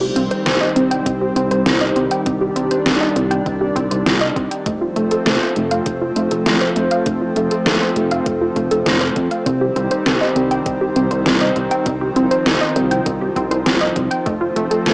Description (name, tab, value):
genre	synthwave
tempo	100 BPM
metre	4/4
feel	straight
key	C dorian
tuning	A4 = 440 Hz
part	lush unison pad	sustained chords	0.0-14.9 s	Eb3 to D4	-19 LUFS	equal	chorus, sidechain pumping, cassette tape
part	warbly dusty pluck	arpeggios	0.0-14.9 s	A3 to G5	-20 LUFS	right 1 dB	chorus, cassette tape, tape echo
part	chorused synth bass	bass	0.0-14.9 s	F1 to F2	-22 LUFS	equal	none
part	pop drum kit	drums	0.2-14.9 s	hi-hat, snare drum	-20 LUFS	equal	overdrive, cassette tape
part	electronic kick drum	drums	1.1-14.4 s	none	-27 LUFS	equal	overdrive, cassette tape
room	wet spring reverb, RT60 1.4 s, digital ambience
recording	home recording on cassette, small speaker sound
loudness	-15 LUFS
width	side -30 dB against mid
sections	0.0-14.9 A section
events	none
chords	0.0 Cm; 4.7 F; 9.5 Cm; 14.3 F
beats	0.46 1.06 1.66 | 2.26 2.86 3.46 4.06 | 4.66 5.26 5.86 6.46 | 7.06 7.66 8.26 8.86 | 9.46 10.06 10.66 11.26 | 11.86 12.46 13.06 13.66 | 14.26 14.86